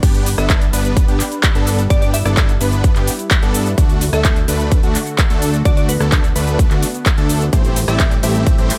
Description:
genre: EDM, festival progressive house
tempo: 128 BPM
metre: 4/4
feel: straight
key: G major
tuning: A4 = 440 Hz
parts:
  - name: lush unison pad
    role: sustained chords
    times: 0.0-8.8 s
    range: D3 to B4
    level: -29 LUFS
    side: equal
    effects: chorus, sidechain pumping
  - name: supersaw chords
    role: riff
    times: 0.0-8.7 s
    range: A3 to E5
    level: -24 LUFS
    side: equal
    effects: cassette tape, sidechain pumping, digital delay
  - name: fat analog bass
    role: bass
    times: 0.0-8.7 s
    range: G1 to G2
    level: -22 LUFS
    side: equal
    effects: sidechain pumping
  - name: big-room dance drum kit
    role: drums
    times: 0.0-8.8 s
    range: cabasa, crash cymbal, handclaps, hi-hat, ride cymbal, rim click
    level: -24 LUFS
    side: equal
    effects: overdrive
  - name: electronic kick drum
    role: drums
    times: 0.0-8.6 s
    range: none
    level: -17 LUFS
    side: equal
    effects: overdrive
  - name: glassy wavetable pluck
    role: melody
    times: 0.4-8.1 s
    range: B4 to E5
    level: -28 LUFS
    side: equal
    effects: chorus, digital delay
room: little or no reverb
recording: none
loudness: -15 LUFS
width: mono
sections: 0.0-8.8 A section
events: none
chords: 0.0 G; 3.8 D; 7.5 Am7

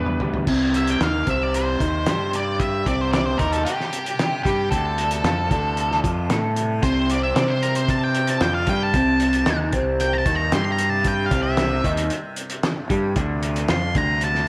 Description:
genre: psychedelic rock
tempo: 114 BPM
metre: 4/4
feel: straight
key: unclear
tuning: A4 = 440 Hz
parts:
  - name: octave-fuzz lead guitar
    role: melody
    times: 0.0-14.5 s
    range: G4 to C6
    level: -27 LUFS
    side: equal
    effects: distortion, diffuse ambient delay
  - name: electric guitar through a small old amp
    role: riff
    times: 0.0-14.5 s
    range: C3 to C5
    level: -26 LUFS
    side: equal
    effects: phaser
  - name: fuzz fingered electric bass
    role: bass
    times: 0.0-14.4 s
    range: C2 to C3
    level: -28 LUFS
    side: equal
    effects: overdrive
  - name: cloth-damped thuddy drum kit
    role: drums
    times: 0.1-14.4 s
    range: crash cymbal, hi-hat, kick drum, snare drum, toms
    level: -28 LUFS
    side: equal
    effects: none
  - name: tanpura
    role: drone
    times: 0.5-14.5 s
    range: C2 to C3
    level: -36 LUFS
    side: equal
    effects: none
room: moderate plate reverb, RT60 1.4 s, small room reverb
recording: dreamy mix soaked in reverb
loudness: -21 LUFS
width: mono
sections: 0.5-14.5 A section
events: drum fill 0.0-0.5; lead electric guitar solo 0.5-14.5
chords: 0.5 C5; 4.7 D5; 8.9 C5; 13.2 D5

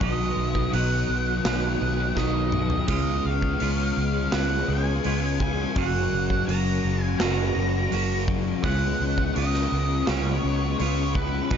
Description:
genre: rock, shoegaze and dream pop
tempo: 84 BPM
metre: 4/4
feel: straight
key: Db mixolydian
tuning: A4 = 441 Hz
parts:
  - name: octave-fuzz lead guitar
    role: melody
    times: 0.0-11.6 s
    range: Cb5 to Bb5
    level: -30 LUFS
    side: right 1 dB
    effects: distortion, tape echo
  - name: biting overdriven guitar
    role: riff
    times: 0.0-11.6 s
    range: Gb2 to Gb4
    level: -29 LUFS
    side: right 13 dB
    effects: reverse reverb
  - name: thick fuzz guitar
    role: riff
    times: 0.0-11.6 s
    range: Gb2 to Db4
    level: -28 LUFS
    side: left 10 dB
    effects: distortion, ensemble chorus
  - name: vintage muted fingered electric bass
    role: bass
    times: 0.0-11.6 s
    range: Gb1 to Db2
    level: -27 LUFS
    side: equal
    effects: none
  - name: big rock drum kit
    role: drums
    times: 0.0-11.6 s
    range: hi-hat, kick drum, snare drum, splash cymbal, toms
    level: -30 LUFS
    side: equal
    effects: none
room: small room ambience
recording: dark, warm production, nothing above 7.5 kHz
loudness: -22 LUFS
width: side -8 dB against mid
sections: 0.0-11.6 A section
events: drum fill 2.2-2.9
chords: 0.0 Cb; 2.9 Db5; 5.8 Gb; 8.6 Db7sus4

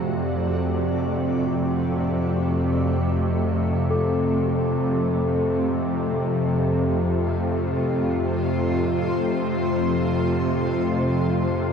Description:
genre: dark ambient drone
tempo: free time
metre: none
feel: none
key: F major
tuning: A4 = 440 Hz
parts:
  - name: granular cloud pad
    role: sustained chords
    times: 0.0-11.7 s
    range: A3 to D5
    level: -28 LUFS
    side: equal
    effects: built-in reverb, shimmer reverb
  - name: bowed-like drone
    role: drone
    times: 0.0-11.7 s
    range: F2 to C3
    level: -22 LUFS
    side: equal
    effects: built-in reverb
  - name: bronze singing bowl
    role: texture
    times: 3.9-11.7 s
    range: A4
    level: -31 LUFS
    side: left 2 dB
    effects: shimmer reverb
room: wet huge ambient reverb, RT60 8.6 s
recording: dark, warm production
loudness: -20 LUFS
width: side -6 dB against mid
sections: 0.0-11.7 A section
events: fade-in on ambient pad 0.0-11.7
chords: 0.0 D; 3.9 F

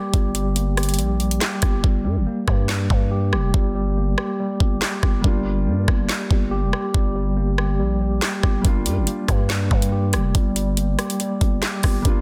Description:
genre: hip hop, drill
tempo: 141 BPM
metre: 4/4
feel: half-time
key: G minor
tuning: A4 = 440 Hz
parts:
  - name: mellow tine electric piano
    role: arpeggios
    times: 0.0-12.2 s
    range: G3 to G4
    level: -27 LUFS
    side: equal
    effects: low-pass filter, tape echo
  - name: growling 808-style bass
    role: bass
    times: 0.1-12.2 s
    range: F1 to G2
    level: -25 LUFS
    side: equal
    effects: none
  - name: drill drum kit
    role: drums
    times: 0.1-12.2 s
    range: handclaps, hi-hat, kick drum, rim click, snare drum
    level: -23 LUFS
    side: equal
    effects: none
  - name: felt-muted upright piano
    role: accompaniment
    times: 5.2-12.2 s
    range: G3 to F4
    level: -34 LUFS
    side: equal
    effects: low-pass filter
room: digital ambience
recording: dense, heavily limited modern master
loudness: -21 LUFS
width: mono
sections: 0.0-12.2 A section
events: break 0.0-3.5; hi-hats muted 1.8-8.6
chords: 0.0 Gm7

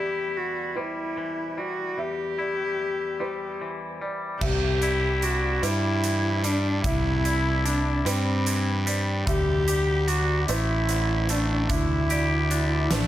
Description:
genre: post-rock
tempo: 49 BPM (dotted quarters)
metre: 6/8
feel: straight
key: C lydian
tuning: A4 = 440 Hz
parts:
  - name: dark cello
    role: melody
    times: 0.0-13.1 s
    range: C4 to G4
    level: -27 LUFS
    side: equal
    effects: tape echo
  - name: felt-muted upright piano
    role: arpeggios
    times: 0.0-13.1 s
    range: C5 to E5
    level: -37 LUFS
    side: right 4 dB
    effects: tape echo
  - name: twangy electric guitar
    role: arpeggios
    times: 0.0-13.1 s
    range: E2 to G4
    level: -31 LUFS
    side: left 3 dB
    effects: tape echo
  - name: fuzz fingered electric bass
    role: bass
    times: 4.4-13.1 s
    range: A1 to G2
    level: -25 LUFS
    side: equal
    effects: overdrive
  - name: huge arena drum kit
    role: drums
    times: 4.4-13.1 s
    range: crash cymbal, hi-hat, kick drum, snare drum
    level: -31 LUFS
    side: right 1 dB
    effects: none
room: light reverb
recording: none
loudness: -23 LUFS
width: side -13 dB against mid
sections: 0.0-4.4 A section; 4.4-13.1 A section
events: none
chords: 0.0 Em; 4.4 Cadd9; 9.3 Dsus4

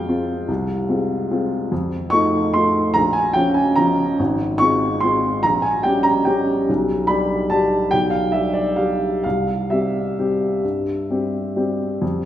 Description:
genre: classical, piano waltz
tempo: 126-153 BPM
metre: 3/4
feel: rubato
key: F minor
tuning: A4 = 441 Hz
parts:
  - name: warm upright piano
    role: solo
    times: 0.0-12.3 s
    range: Ab1 to Db6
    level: -17 LUFS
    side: equal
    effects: none
room: wet recital hall reverb, RT60 1.5 s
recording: heard from further back in the room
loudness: -17 LUFS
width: side -11 dB against mid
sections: 0.0-12.0 A section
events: none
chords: 0.0 Fm; 1.7 F7; 3.0 Bbm; 4.2 Fm/Ab; 5.4 Gdim/Bb; 6.7 G7/B; 9.2 C

